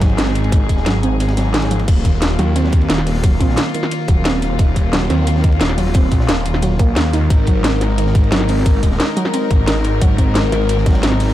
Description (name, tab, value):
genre	dark technical drum and bass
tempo	177 BPM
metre	4/4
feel	straight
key	Eb dorian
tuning	A4 = 440 Hz
part	warm studio string section	sustained chords	0.0-11.3 s	Eb3 to Bb4	-23 LUFS	left 3 dB	sidechain pumping
part	warbly dusty pluck	arpeggios	0.0-11.2 s	Eb3 to Eb4	-22 LUFS	right 4 dB	chorus, sidechain pumping, digital delay
part	snarling distorted saw bass	bass	0.0-11.3 s	Eb1 to Eb2	-17 LUFS	equal	distortion, tube saturation, sidechain pumping
part	crunchy breakbeat drum kit	drums	0.0-11.3 s	hi-hat, ride cymbal, snare drum	-30 LUFS	equal	none
part	drum and bass drum kit	drums	0.0-11.3 s	crash cymbal, hi-hat, snare drum	-21 LUFS	equal	none
part	electronic kick drum	drums	0.0-10.9 s	none	-14 LUFS	equal	none
room	small room ambience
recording	none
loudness	-13 LUFS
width	side -13 dB against mid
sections	0.0-11.3 A section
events	kick drops out 1.2-1.9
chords	0.0 Ab; 1.9 Eb5; 7.3 Ab